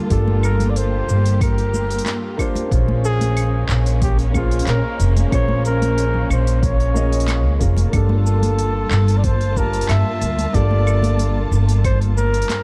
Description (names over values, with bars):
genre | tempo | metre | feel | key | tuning
sunset chillout | 92 BPM | 4/4 | straight | unclear | A4 = 440 Hz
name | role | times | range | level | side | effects
dark baby grand piano | accompaniment | 0.0-12.6 s | Bb3 to A5 | -29 LUFS | equal | none
dark studio string section | sustained chords | 0.0-12.6 s | G3 to A5 | -30 LUFS | equal | none
upright bass | bass | 0.1-12.4 s | F1 to D2 | -20 LUFS | equal | none
electronic kick drum | drums | 0.1-12.0 s | none | -23 LUFS | equal | overdrive, small room ambience
smooth R&B drum kit | drums | 0.1-12.6 s | claves, handclaps, hi-hat, shaker | -32 LUFS | equal | small room ambience
congas | percussion | 0.3-12.6 s | none | -32 LUFS | equal | none
breathy flugelhorn | melody | 0.4-12.6 s | F4 to E5 | -27 LUFS | equal | delay
room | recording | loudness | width
light reverb, small room ambience | dark, warm production | -18 LUFS | mono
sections
0.0-12.6 A section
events
none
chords
0.0 Gm9; 2.7 Bbm9; 7.9 Gm9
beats
| 0.11 0.76 1.41 2.06 | 2.71 3.37 4.02 4.67 | 5.32 5.97 6.63 7.28 | 7.93 8.58 9.24 9.89 | 10.54 11.19 11.85 12.50